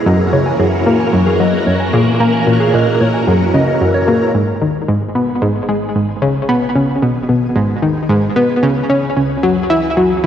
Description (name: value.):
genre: ambient.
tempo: 112 BPM.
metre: 4/4.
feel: straight.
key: G# minor.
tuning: A4 = 441 Hz.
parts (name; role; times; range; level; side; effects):
phased string machine; sustained chords; 0.0-10.3 s; D#3 to B4; -20 LUFS; equal; ensemble chorus, phaser, cassette tape.
mellow electric guitar; arpeggios; 0.0-4.1 s; G#4 to G#5; -20 LUFS; right 1 dB; auto-pan, cassette tape, tape echo.
twinkling granular texture; texture; 0.0-10.3 s; G#3 to A#5; -29 LUFS; equal; none.
analog pluck; riff; 0.1-10.3 s; F#2 to E4; -13 LUFS; equal; chorus, cassette tape, tape echo.
warm sub bass; bass; 4.3-10.3 s; G#1 to C#2; -37 LUFS; equal; none.
room: wet lush hall reverb, RT60 2.3 s.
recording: home recording on cassette.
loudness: -12 LUFS.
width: side -9 dB against mid.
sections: 0.0-4.3 A section; 4.3-10.3 B section.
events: fade-in on string machine 4.3-10.3; fade-in on sub bass 4.3-10.3.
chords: 0.1 F#7; 4.3 G#m; 8.6 C#m7.